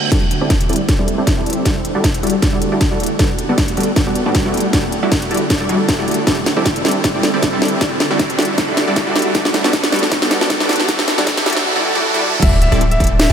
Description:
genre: future bass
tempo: 156 BPM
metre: 4/4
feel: swing 54% on 16ths, half-time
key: E minor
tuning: A4 = 440 Hz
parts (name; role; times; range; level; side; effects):
- shimmering ambient pad; sustained chords; 0.0-13.3 s; D3 to G4; -26 LUFS; equal; chorus, built-in reverb, vintage 12-bit sampler grit, sidechain pumping
- reverse cymbal, riser and sub drop; sound effects; 0.0-13.3 s; none; -26 LUFS; right 2 dB; none
- supersaw stab; riff; 0.1-13.3 s; G3 to D5; -18 LUFS; right 1 dB; sidechain pumping, low-pass filter, diffuse ambient delay
- warm 808-style bass; bass; 0.1-13.3 s; D1 to G2; -21 LUFS; equal; none
- electronic kick drum; drums; 0.1-13.1 s; none; -18 LUFS; equal; none
- trap drum kit; drums; 0.1-13.3 s; crash cymbal, hi-hat, snare drum; -18 LUFS; equal; none
- bright concert grand piano; melody; 12.4-13.3 s; E5; -24 LUFS; left 2 dB; sidechain pumping, tape echo
room: wet huge ambient reverb, RT60 4.0 s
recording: dreamy mix soaked in reverb, high-pass filter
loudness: -13 LUFS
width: side -8 dB against mid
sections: 0.1-12.4 A section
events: build-up 0.1-12.4; drum fill 0.1-11.7; filter sweep on supersaw synth 0.1-12.4; filter sweep 0.1-12.4; impact 12.4-13.3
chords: 0.1 D9sus4; 1.7 Em11; 3.2 Gmaj9; 4.5 Em11; 6.3 D9sus4; 7.8 Em11; 9.3 Gmaj9; 10.7 Em11; 12.4 D9sus4

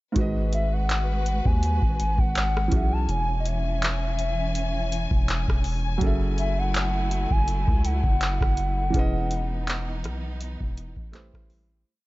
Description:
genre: contemporary R&B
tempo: 82 BPM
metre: 4/4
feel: swing 54% on 16ths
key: unclear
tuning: A4 = 444 Hz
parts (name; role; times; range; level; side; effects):
- felt-muted upright piano; accompaniment; 0.1-11.9 s; G#2 to E5; -32 LUFS; right 2 dB; none
- warm studio string section; sustained chords; 0.2-11.9 s; E3 to G#5; -34 LUFS; left 1 dB; sidechain pumping
- long sustained 808-style bass; bass; 0.2-11.8 s; E1 to D#2; -26 LUFS; equal; none
- booming analog drum machine; drums; 0.2-11.7 s; handclaps, hi-hat, kick drum, rim click; -25 LUFS; equal; none
- hollow clarinet-like synth lead; melody; 0.5-11.1 s; D#5 to A5; -30 LUFS; left 1 dB; chorus, tape echo
room: digital ambience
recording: nothing above 7.7 kHz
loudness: -22 LUFS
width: side -19 dB against mid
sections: 0.2-11.9 chorus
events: fade-out 8.9-11.9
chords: 0.2 G#m7; 2.7 E6; 6.0 F#m9; 8.9 C#m7/E; 11.1 Am7

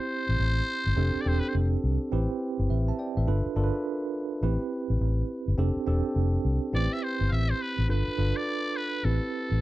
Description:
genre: R&B, new jack swing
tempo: 104 BPM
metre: 4/4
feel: swing 63% on 16ths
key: A minor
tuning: A4 = 441 Hz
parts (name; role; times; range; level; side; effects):
- trumpet with metal mute; melody; 0.0-1.5, 6.8-9.6 s; A4 to F5; -31 LUFS; left 1 dB; slapback echo
- bell-like tine electric piano; accompaniment; 0.0-9.6 s; C4 to A5; -30 LUFS; right 3 dB; fast stereo tremolo
- vintage muted fingered electric bass; bass; 0.3-9.6 s; E1 to C2; -25 LUFS; left 1 dB; none
room: little or no reverb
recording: dry, close 1970s-style studio recording, faint mains hum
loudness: -25 LUFS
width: side -16 dB against mid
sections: 0.0-9.6 A section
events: none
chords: 0.0 Am7; 1.0 F6; 2.1 Am7; 3.3 G9; 4.4 Am7; 5.6 F6; 6.7 Am7; 7.9 G9; 9.0 Am7

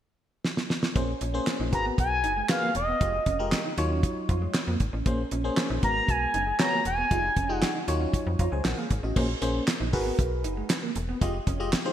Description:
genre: early-eighties boogie funk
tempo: 117 BPM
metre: 4/4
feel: straight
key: unclear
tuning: A4 = 441 Hz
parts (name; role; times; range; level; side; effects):
- damped 70s drum kit; drums; 0.4-11.8 s; crash cymbal, handclaps, hi-hat, kick drum, snare drum; -27 LUFS; equal; gated reverb
- FM electric piano; accompaniment; 1.0-11.9 s; Gb3 to Bb5; -32 LUFS; left 1 dB; chorus, phaser
- electric guitar at the edge of break-up; riff; 1.0-11.9 s; Ab3 to F4; -36 LUFS; right 4 dB; analog chorus
- slap-like FM bass; bass; 1.0-11.7 s; E1 to F2; -30 LUFS; equal; none
- expressive synth lead; melody; 1.7-7.8 s; Eb5 to Bb5; -27 LUFS; equal; chorus, digital delay
room: moderate lush hall reverb, RT60 2.1 s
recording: bright 1980s-style digital production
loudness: -24 LUFS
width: side -10 dB against mid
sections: 1.0-9.2 A section; 9.2-11.9 B section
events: drum fill 0.4-1.0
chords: 0.0 N.C.; 1.0 Bbm9; 1.7 Abm9; 3.0 Fm9; 3.8 Ebm9; 5.1 Bbm9; 5.8 Abm9; 7.1 Fm9; 7.9 Ebm9; 9.2 Bbm9; 9.9 Abm9; 11.2 Fm9

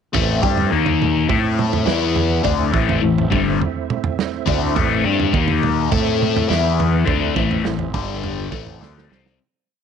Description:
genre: psychedelic rock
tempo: 104 BPM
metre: 4/4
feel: straight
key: unclear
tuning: A4 = 440 Hz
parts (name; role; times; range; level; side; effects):
- tonewheel organ; sustained chords; 0.1-9.4 s; D3 to B5; -27 LUFS; right 13 dB; chorus vibrato, slow rotary speaker
- biting overdriven guitar; riff; 0.1-9.4 s; G2 to A4; -19 LUFS; left 9 dB; phaser
- fuzz fingered electric bass; bass; 0.1-9.4 s; G1 to A2; -22 LUFS; right 2 dB; overdrive
- crunchy breakbeat drum kit; drums; 0.1-9.4 s; kick drum, snare drum, toms; -23 LUFS; right 5 dB; none
room: small room ambience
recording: 1960s-style stereo with parts hard left and right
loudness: -16 LUFS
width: side -7 dB against mid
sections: 0.1-9.4 riff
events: fade-out 7.1-9.4; drum fill 8.8-9.4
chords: 0.1 Am; 0.7 D#5; 1.3 Am; 1.9 E5; 2.4 Am; 5.3 D#5; 5.9 Am; 6.5 E5; 7.1 Am; 7.9 G5; 8.5 Am

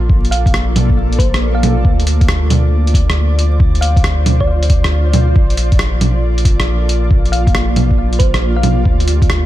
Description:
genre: future garage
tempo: 137 BPM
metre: 4/4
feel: swing 66% on 16ths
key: unclear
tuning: A4 = 441 Hz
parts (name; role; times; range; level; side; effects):
- granular cloud pad; sustained chords; 0.0-9.5 s; Bb3 to D5; -21 LUFS; equal; built-in reverb, sidechain pumping
- warm sub bass; bass; 0.0-9.5 s; Bb1 to D2; -14 LUFS; equal; tube saturation, sidechain pumping
- electronic kick drum; drums; 0.1-9.3 s; none; -13 LUFS; equal; none
- lo-fi sampler-style drum kit; drums; 0.2-9.4 s; bongos, hi-hat, rim click; -18 LUFS; right 1 dB; none
- thumb-piano-like synth pluck; melody; 0.3-8.9 s; C5 to F5; -24 LUFS; left 1 dB; chorus, vintage 12-bit sampler grit, ping-pong delay
room: little or no reverb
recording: vinyl crackle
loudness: -11 LUFS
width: side -14 dB against mid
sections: 0.0-9.5 A section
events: none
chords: 0.0 Bbmaj7; 1.8 Dm7; 5.4 Bbmaj7; 8.9 Dm7

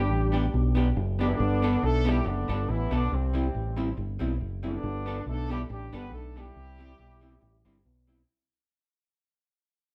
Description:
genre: ska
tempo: 139 BPM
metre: 4/4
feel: swing 54% on 8ths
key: G major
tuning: A4 = 440 Hz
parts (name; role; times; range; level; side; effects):
- mellow horn section; melody; 0.0-7.9 s; C3 to B4; -34 LUFS; equal; none
- fingered electric bass; bass; 0.0-8.2 s; F#1 to C2; -30 LUFS; equal; none
- vintage hollow-body jazz guitar; accompaniment; 0.3-8.2 s; G3 to A4; -35 LUFS; equal; none
room: light reverb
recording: band playing live in one room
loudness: -28 LUFS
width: mono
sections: 0.0-1.4 A section; 1.4-8.3 B section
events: fade-out 1.4-8.3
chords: 0.0 G; 3.1 C; 4.8 Gadd9; 6.6 C

